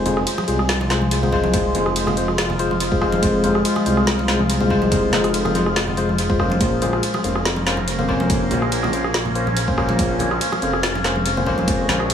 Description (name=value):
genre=deep dubstep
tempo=142 BPM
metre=4/4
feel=swing 53% on 16ths, half-time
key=F minor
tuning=A4 = 439 Hz
part: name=overtone-sweeping drone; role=sustained chords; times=0.0-12.1 s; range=Ab3 to F4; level=-25 LUFS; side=equal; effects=chorus, built-in reverb
part: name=barky tine electric piano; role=stabs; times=0.0-12.0 s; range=Ab3 to C5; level=-23 LUFS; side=left 3 dB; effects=dub echo
part: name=dark detuned saw bass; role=bass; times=0.0-12.1 s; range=F1 to C2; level=-22 LUFS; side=equal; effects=none
part: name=deep house drum kit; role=drums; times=0.1-12.1 s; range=hi-hat, ride cymbal, rim click, snare drum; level=-24 LUFS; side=right 1 dB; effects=dub echo
part: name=congas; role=percussion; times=0.1-12.0 s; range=none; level=-27 LUFS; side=right 1 dB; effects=dub echo
part: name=electronic kick drum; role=drums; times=1.3-11.8 s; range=none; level=-23 LUFS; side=equal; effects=none
room=moderate spring reverb, RT60 1.2 s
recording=echo-heavy mix, small room ambience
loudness=-17 LUFS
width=side -8 dB against mid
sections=0.0-12.1 A section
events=none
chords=0.0 Fm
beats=0.27 0.69 1.11 | 1.54 1.96 2.38 2.81 | 3.23 3.65 4.07 4.50 | 4.92 5.34 5.76 6.18 | 6.61 7.03 7.45 7.88 | 8.30 8.72 9.14 9.56 | 9.99 10.41 10.83 11.26 | 11.68 12.10